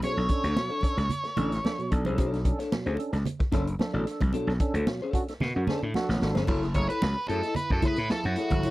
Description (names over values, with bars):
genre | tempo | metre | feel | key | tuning
funk | 111 BPM | 4/4 | straight | unclear | A4 = 440 Hz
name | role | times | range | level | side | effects
octave-fuzz lead guitar | melody | 0.0-1.9, 6.8-8.7 s | F#4 to C#5 | -31 LUFS | right 1 dB | distortion
electric guitar at the edge of break-up | accompaniment | 0.0-8.7 s | D4 to D#5 | -33 LUFS | left 3 dB | none
tonewheel organ | stabs | 0.0-8.7 s | B2 to A4 | -33 LUFS | right 2 dB | overdrive, chorus vibrato, slow rotary speaker
vintage drum kit | drums | 0.0-8.7 s | crash cymbal, hi-hat, kick drum, snare drum | -29 LUFS | equal | none
congas | percussion | 0.0-8.7 s | none | -34 LUFS | right 4 dB | none
gritty slap bass | bass | 0.2-8.7 s | F#1 to B2 | -28 LUFS | equal | overdrive
breathy trombone | second line | 5.1-8.7 s | E4 to F#4 | -34 LUFS | right 2 dB | none
room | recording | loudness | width
little or no reverb | dry, close 1970s-style studio recording | -25 LUFS | side -18 dB against mid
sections
0.0-6.5 A section; 6.5-8.7 B section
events
band accent 4.3-6.5; drum fill 5.4-6.5; lead electric guitar solo 6.5-8.7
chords
0.0 Bm9; 6.5 F#m7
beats
| 0.03 0.57 1.11 1.64 | 2.18 2.72 3.26 3.80 | 4.34 4.88 5.41 5.95 | 6.49 7.03 7.57 8.11 | 8.64